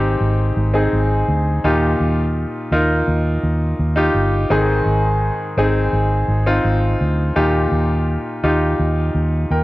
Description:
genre	pop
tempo	84 BPM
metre	4/4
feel	straight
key	Eb major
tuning	A4 = 440 Hz
part	bright concert grand piano	accompaniment	0.0-9.6 s	Ab2 to G5	-18 LUFS	left 1 dB	none
part	vintage muted fingered electric bass	bass	0.0-9.6 s	G1 to Eb2	-18 LUFS	equal	none
room	light reverb, studio ambience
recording	worn, warbling old tape, cassette tape, warbly pitch drift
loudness	-15 LUFS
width	side -18 dB against mid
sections	0.0-9.6 A section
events	none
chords	0.0 Ab; 1.6 Ebadd9; 4.5 Ab; 7.4 Ebadd9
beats	0.21 0.93 | 1.64 2.35 3.07 3.79 | 4.50 5.22 5.93 6.65 | 7.36 8.08 8.79 9.51

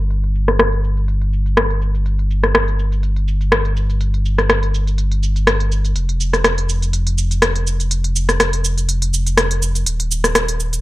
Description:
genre	afro house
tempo	123 BPM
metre	4/4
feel	swing 55% on 16ths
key	unclear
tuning	A4 = 441 Hz
part	dark detuned saw bass	bass	0.0-10.8 s	Eb1 to G1	-17 LUFS	equal	none
part	deep house drum kit	drums	0.0-10.8 s	hi-hat, rim click, shaker	-17 LUFS	equal	low-pass filter on hats, low-pass filter on perc, low-pass filter on snare, low-pass filter on room
room	light reverb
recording	none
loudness	-15 LUFS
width	side -17 dB against mid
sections	0.0-10.8 A section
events	filter sweep on drum 0.0-10.8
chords	none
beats	| 0.11 0.59 1.08 1.57 | 2.06 2.54 3.03 3.52 | 4.01 4.50 4.98 5.47 | 5.96 6.45 6.93 7.42 | 7.91 8.40 8.89 9.37 | 9.86 10.35

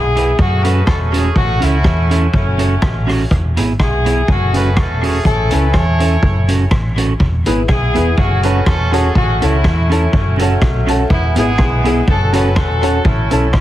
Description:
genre	ska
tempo	123 BPM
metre	4/4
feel	swing 54% on 8ths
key	unclear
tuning	A4 = 439 Hz
part	clear horn section	melody	0.0-13.6 s	F#3 to C#5	-19 LUFS	left 1 dB	dub echo
part	hollow-body short-scale fingered electric bass	bass	0.0-13.6 s	E1 to F#2	-16 LUFS	equal	none
part	clean electric guitar	accompaniment	0.2-13.6 s	B3 to B4	-22 LUFS	right 4 dB	none
part	street-band drum kit	drums	0.2-13.6 s	hi-hat, kick drum, rim click	-17 LUFS	equal	none
part	clear upright piano	stabs	7.5-13.6 s	B3 to B4	-21 LUFS	left 2 dB	none
room	light reverb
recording	heavily compressed radio sound, vinyl crackle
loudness	-12 LUFS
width	side -14 dB against mid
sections	0.0-13.6 A section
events	none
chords	0.4 F#m; 1.4 A; 2.3 F#m; 3.3 E; 4.3 F#m; 5.3 A; 6.2 F#m; 7.2 E; 8.2 F#m; 9.2 A; 10.1 F#m; 11.1 E; 12.1 F#m; 13.1 A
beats	0.39 0.88 | 1.37 1.85 2.34 2.83 | 3.31 3.80 4.28 4.77 | 5.26 5.74 6.23 6.72 | 7.20 7.69 8.18 8.66 | 9.15 9.64 10.13 10.61 | 11.10 11.59 12.08 12.56 | 13.05 13.54

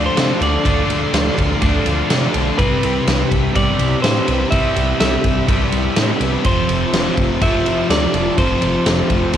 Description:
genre	rock, shoegaze and dream pop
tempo	124 BPM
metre	4/4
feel	straight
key	C major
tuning	A4 = 438 Hz
part	clean electric guitar	melody	0.0-9.4 s	B4 to E5	-23 LUFS	right 1 dB	cassette tape, tape echo
part	string machine, violins	sustained chords	0.0-9.4 s	F3 to C6	-25 LUFS	right 1 dB	ensemble chorus, cassette tape
part	electric guitar through a small old amp	riff	0.0-9.4 s	C3 to C5	-31 LUFS	right 10 dB	none
part	overdriven electric guitar	riff	0.0-9.4 s	F2 to D4	-21 LUFS	right 1 dB	cassette tape
part	thick fuzz guitar	riff	0.0-9.4 s	C3 to A4	-24 LUFS	left 8 dB	distortion, wide subtle chorus, cassette tape
part	chorused synth bass	bass	0.0-9.4 s	F1 to C3	-22 LUFS	equal	transformer saturation
part	huge arena drum kit	drums	0.2-9.4 s	kick drum, ride cymbal, snare drum	-19 LUFS	equal	none
room	light reverb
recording	home recording on cassette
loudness	-14 LUFS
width	side -10 dB against mid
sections	0.0-9.4 A section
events	none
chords	0.0 Dm7; 2.6 Cmaj7; 6.5 Fmaj7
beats	0.17 | 0.66 1.14 1.63 2.11 | 2.60 3.08 3.56 4.05 | 4.53 5.01 5.49 5.98 | 6.46 6.94 7.42 7.90 | 8.38 8.86 9.34

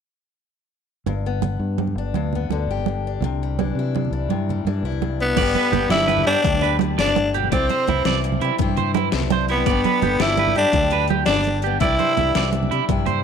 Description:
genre	highlife guitar band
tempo	112 BPM (dotted quarters)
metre	12/8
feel	straight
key	G major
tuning	A4 = 440 Hz
part	picked steel-string acoustic guitar	accompaniment	1.1-13.2 s	G2 to G4	-28 LUFS	left 11 dB	none
part	fingered electric bass	bass	1.1-13.2 s	G1 to C3	-24 LUFS	left 1 dB	none
part	congas	percussion	1.1-13.2 s	none	-26 LUFS	right 10 dB	none
part	growling tenor saxophone	melody	5.2-12.5 s	B3 to E4	-21 LUFS	left 1 dB	tape echo
part	electric guitar at the edge of break-up	arpeggios	5.4-13.2 s	E4 to D5	-24 LUFS	right 12 dB	tape echo
part	dubstep drum kit	drums	5.4-13.1 s	crash cymbal, hi-hat, kick drum, snare drum	-25 LUFS	left 4 dB	overdrive
room	light reverb, small room ambience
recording	1960s-style stereo with parts hard left and right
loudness	-18 LUFS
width	side -7 dB against mid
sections	1.1-5.4 A section; 5.4-13.2 B section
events	none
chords	1.1 G; 3.2 Cadd9; 5.4 G; 7.5 Cadd9; 9.7 G; 11.8 Cadd9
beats	| 1.06 1.60 2.14 2.68 | 3.22 3.75 4.29 4.83 | 5.37 5.91 6.44 6.98 | 7.52 8.06 8.59 9.13 | 9.67 10.20 10.74 11.28 | 11.81 12.35 12.89

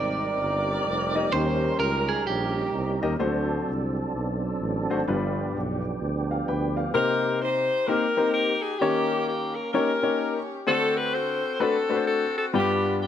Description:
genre	gospel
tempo	128 BPM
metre	4/4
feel	swing 62% on 8ths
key	C minor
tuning	A4 = 440 Hz
part	clean electric guitar	melody	0.0-3.0 s	G4 to D5	-30 LUFS	right 5 dB	spring reverb
part	mellow saxophone section	melody	0.0-3.2, 6.9-13.1 s	Bb3 to D5	-25 LUFS	left 1 dB	none
part	warm baby grand piano	accompaniment	0.0-13.1 s	G2 to G5	-27 LUFS	left 4 dB	none
part	tonewheel organ	sustained chords	0.0-6.9 s	F3 to Bb4	-30 LUFS	right 3 dB	slow rotary speaker, chorus vibrato
part	warm tuba	bass	0.0-6.9 s	F1 to Eb2	-29 LUFS	right 1 dB	none
room	light reverb, small room ambience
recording	none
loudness	-23 LUFS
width	side -9 dB against mid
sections	0.0-6.9 A section; 6.9-13.1 B section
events	none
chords	0.0 Cm7; 1.3 Eb7; 3.2 D7; 5.1 G7; 6.9 Cm7; 8.8 Eb7; 10.7 D7; 12.5 G7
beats	0.38 0.85 | 1.32 1.79 2.26 2.73 | 3.20 3.67 4.14 4.61 | 5.08 5.54 6.01 6.48 | 6.95 7.42 7.88 8.35 | 8.81 9.28 9.74 10.21 | 10.67 11.14 11.61 12.07 | 12.54 13.00

